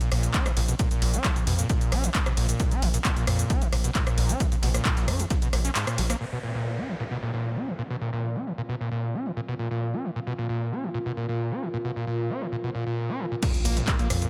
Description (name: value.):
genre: driving peak-time techno.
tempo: 133 BPM.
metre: 4/4.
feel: straight.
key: Bb phrygian.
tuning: A4 = 440 Hz.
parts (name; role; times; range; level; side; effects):
screaming distorted acid line; riff; 0.0-14.3 s; Ab2 to Db4; -32 LUFS; equal; distortion, chorus, sidechain pumping, delay.
dusty soul sampler-style drum kit; drums; 0.0-6.2, 13.4-14.2 s; ride cymbal, snare drum; -47 LUFS; equal; none.
punchy analog drum machine; drums; 0.0-6.3, 13.4-14.3 s; crash cymbal, handclaps, hi-hat, ride cymbal, rim click, shaker; -32 LUFS; equal; sidechain pumping on hats, low-pass filter on hats, sidechain pumping on cymbals, low-pass filter on cymbals, sidechain pumping on perc, low-pass filter on perc, low-pass filter on snare, low-pass filter on room.
gritty driven synth bass; bass; 0.1-6.1, 13.7-14.3 s; Bb1 to F2; -28 LUFS; equal; sidechain pumping.
electronic kick drum; drums; 0.3-5.4, 13.4-14.0 s; none; -28 LUFS; equal; none.
downlifter and impact; sound effects; 6.2-9.8, 13.5-14.3 s; none; -40 LUFS; equal; none.
deep dark ambient pad; texture; 8.6-14.3 s; F4 to F5; -38 LUFS; equal; chorus, built-in reverb, sidechain pumping.
room: light reverb, digital ambience.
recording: none.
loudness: -27 LUFS.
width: mono.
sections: 0.0-6.2 A section; 6.2-13.4 B section.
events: drop 0.0-6.2; kick drops out 5.8-6.2; band accent 5.8; impact 13.4-14.3.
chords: 0.0 Bb5.